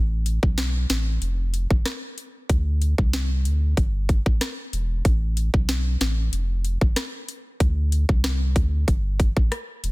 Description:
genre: dancehall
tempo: 94 BPM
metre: 4/4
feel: straight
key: A minor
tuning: A4 = 440 Hz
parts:
  - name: saturated sub bass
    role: bass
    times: 0.0-9.9 s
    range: E1 to D2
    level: -22 LUFS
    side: equal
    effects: none
  - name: island pop drum kit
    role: drums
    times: 0.3-9.9 s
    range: hi-hat, kick drum, rim click, snare drum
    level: -23 LUFS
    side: equal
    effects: none
room: digital ambience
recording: dense, heavily limited modern master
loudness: -20 LUFS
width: side -22 dB against mid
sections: 0.0-9.9 A section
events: none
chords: none

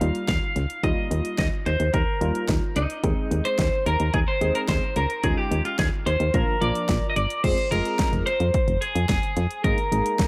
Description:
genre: synth-pop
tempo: 109 BPM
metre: 4/4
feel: straight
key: Eb major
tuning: A4 = 442 Hz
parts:
  - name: twelve-string electric guitar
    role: melody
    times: 0.0-10.3 s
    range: Eb4 to F5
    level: -28 LUFS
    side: equal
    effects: dub echo
  - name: warm analog keys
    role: accompaniment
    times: 0.0-10.3 s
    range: F3 to Ab4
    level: -33 LUFS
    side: equal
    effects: chorus, dub echo
  - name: solid FM bass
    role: bass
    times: 0.0-10.0 s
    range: F1 to F2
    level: -27 LUFS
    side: equal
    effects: none
  - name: deep house drum kit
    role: drums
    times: 0.0-10.3 s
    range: crash cymbal, hi-hat, kick drum, snare drum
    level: -28 LUFS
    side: equal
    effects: overdrive
room: moderate spring reverb, RT60 2.0 s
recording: echo-heavy mix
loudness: -24 LUFS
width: mono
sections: 0.0-7.4 A section; 7.4-10.3 B section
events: none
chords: 0.0 Ebadd9; 3.0 Ab/Eb; 5.2 Dbadd9/Eb; 6.3 Bb; 7.4 Fm; 9.6 Absus2

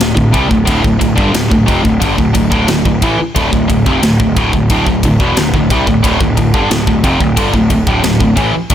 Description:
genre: heavy metal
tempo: 90 BPM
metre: 4/4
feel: straight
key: D minor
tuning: A4 = 442 Hz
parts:
  - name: tight distorted guitar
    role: riff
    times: 0.0-8.7 s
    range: D2 to G3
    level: -12 LUFS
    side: equal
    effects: distortion
  - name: fuzz picked electric bass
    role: bass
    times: 0.0-8.7 s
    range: D1 to C2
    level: -17 LUFS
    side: equal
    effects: overdrive
  - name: tight metal drum kit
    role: drums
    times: 0.0-8.7 s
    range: kick drum, ride cymbal, snare drum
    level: -15 LUFS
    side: equal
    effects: none
room: studio reverb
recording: none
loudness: -9 LUFS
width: side -10 dB against mid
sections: 0.0-8.7 A section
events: none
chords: 0.0 D5

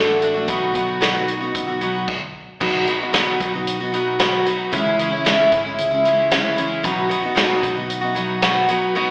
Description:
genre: folk rock and heartland rock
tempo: 114 BPM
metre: 4/4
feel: straight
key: unclear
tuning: A4 = 441 Hz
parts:
  - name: picked twelve-string acoustic guitar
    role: accompaniment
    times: 0.0-9.1 s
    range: B2 to F#4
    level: -18 LUFS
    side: equal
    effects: plate reverb, slapback echo
  - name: mellow fretless electric bass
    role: bass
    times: 0.0-8.6 s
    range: G#1 to C#2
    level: -31 LUFS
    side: equal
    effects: ensemble chorus
  - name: vintage drum kit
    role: drums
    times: 0.2-8.8 s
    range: crash cymbal, hi-hat, kick drum, snare drum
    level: -21 LUFS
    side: equal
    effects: slapback echo
room: moderate club reverb, RT60 0.7 s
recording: live gig heard through the venue's PA, recital hall reverb, AM radio sound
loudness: -16 LUFS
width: side -36 dB against mid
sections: 0.0-2.6 A section; 2.6-9.1 B section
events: stop 2.1-2.6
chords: 0.5 B; 4.7 C#m; 6.8 B

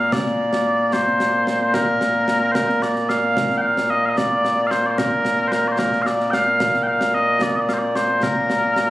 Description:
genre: scottish traditional, Scottish pipe music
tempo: 74 BPM (dotted quarters)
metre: 6/8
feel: straight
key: Bb major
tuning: A4 = 440 Hz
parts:
  - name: mellow small bagpipes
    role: melody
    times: 0.0-8.9 s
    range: Bb2 to G5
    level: -17 LUFS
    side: equal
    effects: none
  - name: concert snare drum and concert bass drum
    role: drums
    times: 0.1-8.9 s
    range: none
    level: -26 LUFS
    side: equal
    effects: none
room: light reverb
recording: recorded on a phone in the room, club reverb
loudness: -17 LUFS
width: side -16 dB against mid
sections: 0.0-3.4 A section; 3.4-8.9 A section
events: none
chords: none

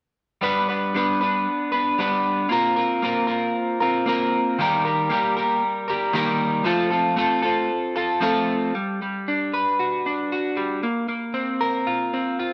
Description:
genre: rock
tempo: 115 BPM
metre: 4/4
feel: straight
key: unclear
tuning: A4 = 439 Hz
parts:
  - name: overdriven electric guitar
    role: solo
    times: 0.4-12.5 s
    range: Eb3 to B4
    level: -23 LUFS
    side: equal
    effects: none
room: moderate spring reverb, RT60 2.9 s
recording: dark, warm production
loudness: -23 LUFS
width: mono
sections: 0.4-8.7 A section; 8.7-12.5 B section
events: none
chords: 0.4 G; 2.5 Bbsus2; 4.6 Eb; 6.7 F; 8.7 Gmaj7; 10.8 Bbsus2

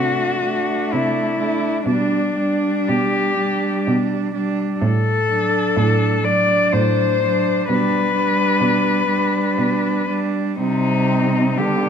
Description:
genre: classical, lyrical piece for cello ensemble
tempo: 62 BPM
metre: 3/4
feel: uneven beats, rubato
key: G major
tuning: A4 = 440 Hz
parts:
  - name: warm cello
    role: melody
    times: 0.0-11.9 s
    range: D4 to D5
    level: -19 LUFS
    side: left 4 dB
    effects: none
  - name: warm cello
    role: second line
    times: 0.0-11.9 s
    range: B3 to D4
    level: -24 LUFS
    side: right 10 dB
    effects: none
  - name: warm cello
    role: accompaniment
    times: 0.0-11.9 s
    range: F#3 to A3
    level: -24 LUFS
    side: left 2 dB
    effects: none
  - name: warm cello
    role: bass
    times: 0.0-11.9 s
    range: A2 to D3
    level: -22 LUFS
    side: right 2 dB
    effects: none
room: moderate recital hall reverb, RT60 1.7 s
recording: none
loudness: -16 LUFS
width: side -7 dB against mid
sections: 0.0-11.9 A section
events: none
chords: 0.0 D7/C; 1.9 G/B; 4.8 D7/A; 7.7 G/B; 10.6 Cm

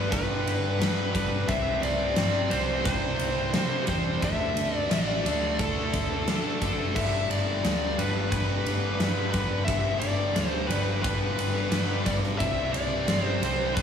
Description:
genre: hard rock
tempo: 88 BPM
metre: 4/4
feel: straight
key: unclear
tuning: A4 = 440 Hz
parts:
  - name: high-gain lead guitar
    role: melody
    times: 0.0-13.8 s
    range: A4 to E5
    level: -30 LUFS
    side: left 2 dB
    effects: distortion, slapback echo
  - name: overdriven electric guitar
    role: riff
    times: 0.0-13.8 s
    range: G2 to D4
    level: -30 LUFS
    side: right 1 dB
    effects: slapback echo
  - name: hollow-body short-scale picked electric bass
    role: bass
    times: 0.0-13.8 s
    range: F#1 to D3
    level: -31 LUFS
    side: equal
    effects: none
  - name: huge arena drum kit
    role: drums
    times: 0.1-13.8 s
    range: crash cymbal, kick drum, ride cymbal, snare drum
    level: -29 LUFS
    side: equal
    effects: none
room: moderate lush hall reverb, RT60 2.8 s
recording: big arena sound, studio reverb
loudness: -24 LUFS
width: side -8 dB against mid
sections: 0.0-13.8 A section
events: none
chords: 0.0 G; 1.5 C5; 4.2 D5; 6.9 G; 12.4 C5

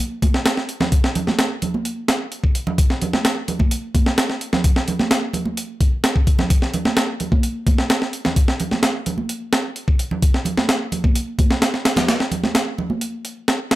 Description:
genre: breakbeat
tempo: 129 BPM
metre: 4/4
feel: straight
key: none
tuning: none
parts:
  - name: breakbeat sampler-style drum kit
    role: drums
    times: 0.2-13.8 s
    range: hi-hat, kick drum, snare drum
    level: -17 LUFS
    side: equal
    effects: none
  - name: congas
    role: percussion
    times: 0.2-13.0 s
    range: none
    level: -24 LUFS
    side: right 2 dB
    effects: none
room: digital ambience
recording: none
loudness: -17 LUFS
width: side -16 dB against mid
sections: 0.0-13.8 A section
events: kick drops out 13.0-13.8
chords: none

